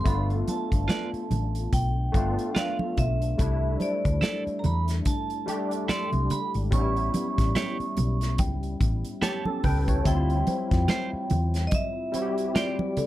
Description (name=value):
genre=lush 1970s-style soul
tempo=72 BPM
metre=4/4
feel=swing 58% on 16ths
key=D minor from 10.1 s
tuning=A4 = 438 Hz
part: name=vibraphone with hard mallets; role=melody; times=0.0-13.1 s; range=D5 to C#6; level=-32 LUFS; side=right 2 dB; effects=none
part: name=barky tine electric piano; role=accompaniment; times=0.0-13.1 s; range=G3 to A5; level=-31 LUFS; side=left 2 dB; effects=ensemble chorus
part: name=hollow-body short-scale fingered electric bass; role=bass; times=0.0-11.7 s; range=G1 to F2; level=-26 LUFS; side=equal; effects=none
part: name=small celesta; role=texture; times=0.0-13.1 s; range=D4 to A5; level=-41 LUFS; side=left 5 dB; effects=none
part: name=modern studio drum kit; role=drums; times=0.1-13.1 s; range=hi-hat, kick drum, snare drum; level=-29 LUFS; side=equal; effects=none
part: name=congas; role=percussion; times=0.1-13.1 s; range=none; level=-31 LUFS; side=right 3 dB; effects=none
part: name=clean electric guitar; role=riff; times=0.9-12.8 s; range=E4 to D5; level=-30 LUFS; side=right 4 dB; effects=none
room=little or no reverb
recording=none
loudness=-24 LUFS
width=side -14 dB against mid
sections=0.0-10.1 A section; 10.1-13.1 B section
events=tine electric piano fill 8.8-10.1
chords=0.1 G7; 3.4 C69; 6.7 A7; 10.1 Dm11 (rootless)